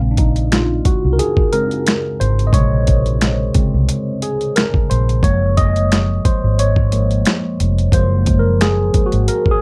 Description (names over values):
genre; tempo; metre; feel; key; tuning
R&B, neo-soul; 89 BPM; 4/4; swing 54% on 16ths; Bb minor; A4 = 440 Hz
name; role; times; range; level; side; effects
tine electric piano; accompaniment; 0.0-9.6 s; C3 to Eb5; -20 LUFS; equal; phaser
vintage muted fingered electric bass; bass; 0.0-9.3 s; F1 to C2; -18 LUFS; equal; none
dusty soul sampler-style drum kit; drums; 0.2-9.6 s; finger snaps, hi-hat, kick drum, snare drum; -19 LUFS; equal; overdrive
room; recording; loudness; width
little or no reverb; none; -16 LUFS; mono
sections
0.0-9.6 A section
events
tine electric piano solo 0.0-9.6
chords
0.0 Bbm9; 5.2 Gbmaj9